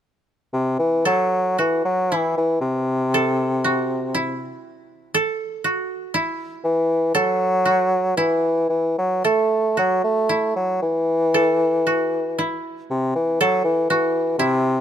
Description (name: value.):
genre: japanese traditional, Japanese chamber music.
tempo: 55-61 BPM.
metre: 2/4.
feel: rubato.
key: A kumoi.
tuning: A4 = 440 Hz.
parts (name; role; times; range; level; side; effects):
warm bassoon; melody; 0.5-14.8 s; C3 to A3; -19 LUFS; left 1 dB; none.
koto; second line; 1.1-14.8 s; E4 to A4; -24 LUFS; right 3 dB; none.
room: little or no reverb.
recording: close, detailed microphones.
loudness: -18 LUFS.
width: side -9 dB against mid.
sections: 0.0-1.0 A section; 1.0-14.8 B section.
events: none.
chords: none.